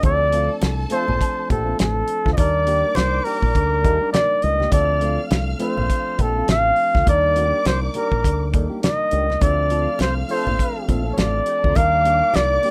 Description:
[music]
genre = lush 1970s-style soul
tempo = 102 BPM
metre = 4/4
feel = swing 58% on 16ths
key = D phrygian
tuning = A4 = 435 Hz
[part]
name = breathy flugelhorn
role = melody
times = 0.0-12.7 s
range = A4 to F5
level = -22 LUFS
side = equal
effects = none
[part]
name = warm studio string section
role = second line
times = 0.0-12.7 s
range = G4 to F6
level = -36 LUFS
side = equal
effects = none
[part]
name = tine electric piano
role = accompaniment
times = 0.0-12.7 s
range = F3 to C5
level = -32 LUFS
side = equal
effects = none
[part]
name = mellow electric guitar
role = riff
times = 0.0-12.7 s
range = A3 to C5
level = -33 LUFS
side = equal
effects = analog chorus
[part]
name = fingered electric bass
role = bass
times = 0.0-12.6 s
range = A1 to Eb2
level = -25 LUFS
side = equal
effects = none
[part]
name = damped 70s drum kit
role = drums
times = 0.0-12.7 s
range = hi-hat, kick drum, snare drum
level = -23 LUFS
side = equal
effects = none
[part]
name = congas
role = percussion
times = 0.0-12.7 s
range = none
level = -35 LUFS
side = equal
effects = none
[sound]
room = light reverb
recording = rough home demo mix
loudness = -19 LUFS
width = mono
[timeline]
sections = 0.0-12.7 A section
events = none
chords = 0.0 Dm7; 2.4 Ebmaj7; 4.7 Dm7; 7.1 Ebmaj7; 9.4 Dm7; 11.8 Ebmaj7

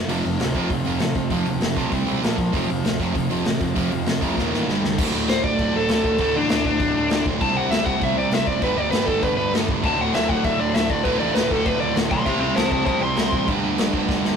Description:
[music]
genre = punk rock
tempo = 198 BPM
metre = 4/4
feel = straight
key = unclear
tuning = A4 = 445 Hz
[part]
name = fuzz picked electric bass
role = bass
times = 0.0-14.4 s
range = D1 to D2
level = -31 LUFS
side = left 1 dB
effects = overdrive
[part]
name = sludgy distorted guitar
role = riff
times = 0.1-14.4 s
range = D2 to C5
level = -24 LUFS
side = right 6 dB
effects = overdrive
[part]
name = sludgy distorted guitar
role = riff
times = 0.1-5.0, 9.8-14.4 s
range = D2 to C4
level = -28 LUFS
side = left 2 dB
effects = overdrive
[part]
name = tight distorted guitar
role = riff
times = 0.1-14.4 s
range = D2 to C4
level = -30 LUFS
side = left 10 dB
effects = distortion
[part]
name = raw garage drum kit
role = drums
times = 0.1-14.3 s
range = crash cymbal, hi-hat, kick drum, snare drum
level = -24 LUFS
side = left 1 dB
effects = none
[part]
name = crunchy overdriven guitar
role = melody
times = 5.3-13.5 s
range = D4 to C6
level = -22 LUFS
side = left 1 dB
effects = tape echo
[sound]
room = moderate studio reverb, RT60 0.6 s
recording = rough rehearsal-room recording, warm saturation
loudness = -19 LUFS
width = side -7 dB against mid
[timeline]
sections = 0.0-5.0 A section; 5.0-14.4 B section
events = drum fill 4.4-5.0, 14.1; overdriven electric guitar solo 5.0-14.4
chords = 0.1 F5; 1.9 C5; 2.2 Bb5; 2.5 F5; 4.4 Eb5; 4.7 G5; 5.0 D; 7.4 C; 8.6 G; 9.8 D; 12.3 C; 13.5 G

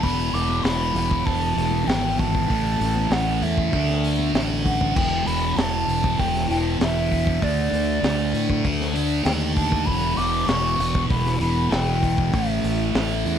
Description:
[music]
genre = psychedelic rock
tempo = 98 BPM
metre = 4/4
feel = straight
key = E minor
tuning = A4 = 440 Hz
[part]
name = breathy mellow concert flute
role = melody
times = 0.0-13.4 s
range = D5 to D6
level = -26 LUFS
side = equal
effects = tape echo
[part]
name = thick fuzz guitar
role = riff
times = 0.0-13.4 s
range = E2 to D4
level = -24 LUFS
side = right 1 dB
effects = distortion, phaser
[part]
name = fuzz fingered electric bass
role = bass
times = 0.0-13.4 s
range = E1 to A2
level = -26 LUFS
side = equal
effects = overdrive
[part]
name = crunchy breakbeat drum kit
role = drums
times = 0.0-13.4 s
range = crash cymbal, hi-hat, kick drum, snare drum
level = -27 LUFS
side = equal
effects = none
[part]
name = congas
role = percussion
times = 0.3-4.9 s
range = none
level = -36 LUFS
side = left 4 dB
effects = none
[sound]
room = light reverb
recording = none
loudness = -19 LUFS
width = side -9 dB against mid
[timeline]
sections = 0.0-5.0 A section; 5.0-13.4 A section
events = drum fill 4.2-5.0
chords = 0.0 E5; 2.5 A5; 3.7 Dsus2; 5.0 E5; 7.4 D5; 9.9 Em; 12.3 A5

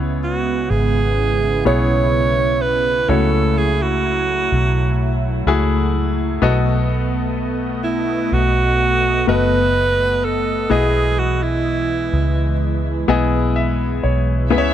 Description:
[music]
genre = pop ballad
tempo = 63 BPM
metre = 4/4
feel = straight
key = unclear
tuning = A4 = 442 Hz
[part]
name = clear baby grand piano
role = accompaniment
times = 0.0-14.7 s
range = B2 to G#5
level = -22 LUFS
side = left 5 dB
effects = none
[part]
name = warm analog pad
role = sustained chords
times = 0.0-14.7 s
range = C#3 to D#5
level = -24 LUFS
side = right 1 dB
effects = lush chorus
[part]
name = vintage muted fingered electric bass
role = bass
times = 0.0-14.7 s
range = F#1 to C#2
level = -20 LUFS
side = equal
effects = none
[part]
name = breathy alto saxophone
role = melody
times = 0.2-12.9 s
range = E4 to C#5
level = -19 LUFS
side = right 4 dB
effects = none
[part]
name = warm studio violin section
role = second line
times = 14.5-14.7 s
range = E5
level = -23 LUFS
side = left 2 dB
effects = none
[sound]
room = little or no reverb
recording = none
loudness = -15 LUFS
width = side -10 dB against mid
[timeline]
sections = 0.0-14.7 A section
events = grand piano fill 12.6-14.5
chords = 0.0 C#m7; 3.1 F#m7; 6.4 B7; 10.7 Emaj7/B

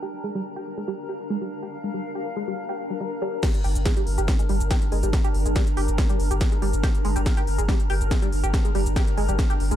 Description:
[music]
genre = driving peak-time techno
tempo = 141 BPM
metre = 4/4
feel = straight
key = G phrygian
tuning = A4 = 440 Hz
[part]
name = tight sequenced synth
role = riff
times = 0.0-9.8 s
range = G3 to G4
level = -30 LUFS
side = equal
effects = chorus, phaser, sidechain pumping, ping-pong delay
[part]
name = granular cloud pad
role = texture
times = 0.0-9.8 s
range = D4 to Bb5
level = -31 LUFS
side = left 1 dB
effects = built-in reverb, sidechain pumping
[part]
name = electronic kick drum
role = drums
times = 3.4-9.5 s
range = none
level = -23 LUFS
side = equal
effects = none
[part]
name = techno drum kit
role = drums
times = 3.4-9.8 s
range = crash cymbal, hi-hat, shaker, snare drum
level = -32 LUFS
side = equal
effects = sidechain pumping on hats, sidechain pumping on cymbals, sidechain pumping on perc
[part]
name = saturated sub bass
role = bass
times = 3.6-9.8 s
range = G1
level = -24 LUFS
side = equal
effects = overdrive, sidechain pumping, low-pass filter
[sound]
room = little or no reverb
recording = dark, warm production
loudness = -21 LUFS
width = side -11 dB against mid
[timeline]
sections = 0.0-3.4 A section; 3.4-9.8 B section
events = filter sweep on synth arpeggio sound 0.0-3.4; drop 3.4-9.8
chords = 0.0 Gm

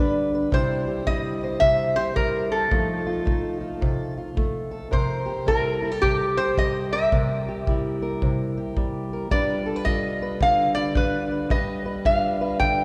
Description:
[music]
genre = acoustic country blues, solo or duo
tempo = 109 BPM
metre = 4/4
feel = swing 63% on 8ths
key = C mixolydian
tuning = A4 = 440 Hz
[part]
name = lap resonator guitar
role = melody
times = 0.0-12.8 s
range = G4 to B5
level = -26 LUFS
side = equal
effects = none
[part]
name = fingerpicked steel-string acoustic guitar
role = accompaniment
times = 0.0-12.8 s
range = C3 to C5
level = -28 LUFS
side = equal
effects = none
[part]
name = kick drum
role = drums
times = 0.5-12.8 s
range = none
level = -30 LUFS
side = equal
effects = none
[sound]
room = wet church reverb, RT60 3.9 s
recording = recorded in a church or concert hall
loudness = -24 LUFS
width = mono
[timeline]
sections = 0.5-12.8 A section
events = none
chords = 0.0 G; 0.5 C; 2.7 F7; 4.9 C7; 9.3 G7

